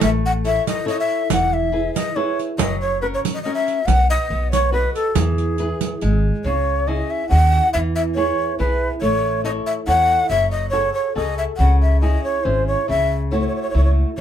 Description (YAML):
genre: italian folk, Italian serenade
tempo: 140 BPM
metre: 3/4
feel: straight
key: E major, C# minor from 6.4 s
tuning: A4 = 440 Hz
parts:
  - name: breathy shakuhachi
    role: melody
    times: 0.0-14.2 s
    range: G#4 to F#5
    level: -20 LUFS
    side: equal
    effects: none
  - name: flamenco guitar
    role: accompaniment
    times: 0.0-14.2 s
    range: C#3 to D#5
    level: -25 LUFS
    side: left 1 dB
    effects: none
  - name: upright bass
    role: bass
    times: 0.0-14.2 s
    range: E1 to E2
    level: -20 LUFS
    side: equal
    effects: none
  - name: riq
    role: percussion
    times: 0.0-6.1 s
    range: none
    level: -24 LUFS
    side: right 7 dB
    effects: none
room: moderate small room reverb, RT60 0.5 s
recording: band playing live in one room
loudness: -17 LUFS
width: side -10 dB against mid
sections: 0.0-6.4 A section; 6.4-14.2 B section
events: none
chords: 0.0 A; 1.3 E; 2.6 F#; 3.9 B5; 4.3 B; 5.1 E; 6.0 N.C.; 6.4 C#m; 7.7 E; 9.0 A; 10.3 F#madd9; 11.6 C#m; 12.9 F#m7/C#